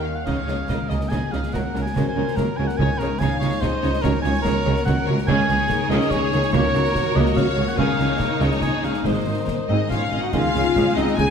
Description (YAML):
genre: cinematic, heroic adventure film score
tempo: 144 BPM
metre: 3/4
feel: straight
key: unclear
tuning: A4 = 439 Hz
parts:
  - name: warm symphonic violin section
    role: melody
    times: 0.0-11.2 s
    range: Bb4 to Ab5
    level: -31 LUFS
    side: left 6 dB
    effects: none
  - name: warm cor anglais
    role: second line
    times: 0.0-11.3 s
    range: Eb4 to Ab5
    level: -27 LUFS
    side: right 2 dB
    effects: none
  - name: warm symphonic violin section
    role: second line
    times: 0.0-11.3 s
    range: Ab4 to Ab5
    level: -30 LUFS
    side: left 3 dB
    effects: none
  - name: mellow trombone section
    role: sustained chords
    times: 0.0-0.1, 10.3-10.5 s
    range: Eb3 to Ab3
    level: -32 LUFS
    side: right 5 dB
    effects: none
  - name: concert harp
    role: arpeggios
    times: 0.0-11.3 s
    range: Ab2 to Bb5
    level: -29 LUFS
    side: left 10 dB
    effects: none
  - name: clear symphonic double bass section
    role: bass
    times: 0.0-11.3 s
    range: Ab1 to Db2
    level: -27 LUFS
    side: right 2 dB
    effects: none
  - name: warm symphonic cello section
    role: bass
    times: 0.0-11.3 s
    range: Ab2 to Db3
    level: -28 LUFS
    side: right 2 dB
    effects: none
  - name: warm symphonic viola section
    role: accompaniment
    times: 0.3-11.3 s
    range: C3 to Ab4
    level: -28 LUFS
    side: right 1 dB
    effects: none
  - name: mellow tuba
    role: bass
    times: 0.3-11.3 s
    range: Ab1 to Db2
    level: -28 LUFS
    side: right 3 dB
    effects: none
  - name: clash cymbals, concert bass drum and concert snare drum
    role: drums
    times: 0.3-11.3 s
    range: none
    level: -28 LUFS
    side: equal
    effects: none
  - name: clear clarinet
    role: second line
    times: 9.7-11.3 s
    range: C4 to Eb4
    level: -29 LUFS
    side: left 2 dB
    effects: none
  - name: silver concert flute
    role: second line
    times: 9.7-11.3 s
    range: Eb5 to Ab5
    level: -30 LUFS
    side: left 2 dB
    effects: none
  - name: warm French horn section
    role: sustained chords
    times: 9.7-11.3 s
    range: Eb4 to Ab4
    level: -23 LUFS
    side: left 5 dB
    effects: none
room: wet scoring stage reverb, RT60 1.4 s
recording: none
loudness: -18 LUFS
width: side -7 dB against mid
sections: 0.3-10.3 A section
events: none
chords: 0.3 Absus4/Db; 1.5 Gb/Db; 2.8 Dbsus2; 4.0 Gb/Db; 5.3 Absus4/Db; 6.5 Gb/Db; 7.8 Dbsus2; 9.0 Ab; 10.3 Absus4/Db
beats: | 0.27 0.69 1.11 | 1.53 1.95 2.37 | 2.79 3.21 3.62 | 4.04 4.45 4.87 | 5.28 5.70 6.12 | 6.53 6.95 7.36 | 7.78 8.20 8.62 | 9.05 9.48 9.91 | 10.34 10.76 11.18